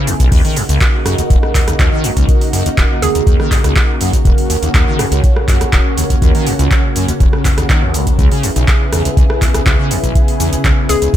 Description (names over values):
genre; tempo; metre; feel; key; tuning
acid house; 122 BPM; 4/4; straight; Eb phrygian; A4 = 440 Hz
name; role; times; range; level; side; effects
lush unison pad; sustained chords; 0.0-11.2 s; Db3 to Ab4; -19 LUFS; equal; chorus, phaser, vintage 12-bit sampler grit, sidechain pumping
liquid acid bass; riff; 0.0-11.2 s; Eb1 to Eb3; -17 LUFS; equal; tube saturation, lush chorus, sidechain pumping
electro analog drum machine; drums; 0.1-11.2 s; cabasa, crash cymbal, handclaps, hi-hat, rim click; -19 LUFS; right 1 dB; overdrive
electronic kick drum; drums; 0.2-11.2 s; none; -12 LUFS; equal; overdrive
hollow square pluck; melody; 3.0-3.5, 10.9-11.2 s; Ab4; -19 LUFS; right 1 dB; chorus, ping-pong delay
room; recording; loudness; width
little or no reverb; none; -10 LUFS; side -12 dB against mid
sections
0.0-11.2 A section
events
none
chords
0.3 Ebm7; 8.2 Dbm7